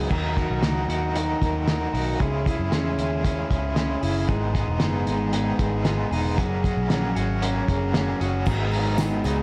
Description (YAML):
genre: jangly indie pop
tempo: 115 BPM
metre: 4/4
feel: straight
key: unclear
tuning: A4 = 441 Hz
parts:
  - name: biting overdriven guitar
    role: accompaniment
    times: 0.0-9.4 s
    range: G#2 to A#4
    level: -30 LUFS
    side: equal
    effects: tremolo
  - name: twelve-string electric guitar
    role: arpeggios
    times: 0.0-9.4 s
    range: G#2 to A#4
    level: -30 LUFS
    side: equal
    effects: tape echo
  - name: vintage muted picked electric bass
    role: bass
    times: 0.0-9.4 s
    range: E1 to F#2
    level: -29 LUFS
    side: equal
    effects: none
  - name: cloth-damped thuddy drum kit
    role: drums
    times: 0.1-9.4 s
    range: crash cymbal, hi-hat, kick drum, snare drum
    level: -29 LUFS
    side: equal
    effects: vintage 12-bit sampler grit
  - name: tambourine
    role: percussion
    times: 8.5-9.4 s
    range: none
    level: -49 LUFS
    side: equal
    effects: none
room: light reverb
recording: none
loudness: -24 LUFS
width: mono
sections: 0.1-8.5 A section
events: none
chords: 0.1 D#m; 2.2 C#m; 4.3 G#m; 6.4 F#add9; 8.5 G#m7